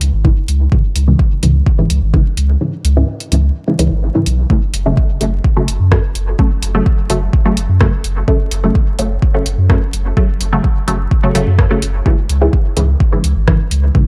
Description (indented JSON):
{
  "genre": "dub techno",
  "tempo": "127 BPM",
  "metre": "4/4",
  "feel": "straight",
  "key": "F# minor",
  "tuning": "A4 = 440 Hz",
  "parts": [
    { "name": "warm sub bass", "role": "bass", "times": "0.0-13.9 s", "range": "F#1 to F#2", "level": "-16 LUFS", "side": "equal", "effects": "sidechain pumping" },
    { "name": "deep house drum kit", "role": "drums", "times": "0.0-13.8 s", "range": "hi-hat, rim click", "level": "-24 LUFS", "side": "equal", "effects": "overdrive, dub echo" },
    { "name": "filtered dub chord stab", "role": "stabs", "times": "0.2-14.0 s", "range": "G#2 to A3", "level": "-20 LUFS", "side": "equal", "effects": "phaser, sidechain pumping, dub echo" },
    { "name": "electronic kick drum", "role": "drums", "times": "0.2-14.0 s", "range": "none", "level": "-15 LUFS", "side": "equal", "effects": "overdrive" }
  ],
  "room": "light reverb, digital ambience",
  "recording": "vinyl crackle",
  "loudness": "-14 LUFS",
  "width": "mono",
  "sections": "0.0-14.1 A section",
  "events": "filter sweep on synth stab 0.0-14.1; kick drops out 2.6-4.5",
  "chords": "0.0 C#m; 4.5 F#m; 12.1 C#m",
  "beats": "0.25 | 0.72 1.19 1.67 2.14 | 2.61 3.08 3.55 4.03 | 4.50 4.97 5.44 5.92 | 6.39 6.86 7.33 7.81 | 8.28 8.75 9.22 9.70 | 10.17 10.64 11.11 11.59 | 12.06 12.53 13.00 13.48 | 13.95"
}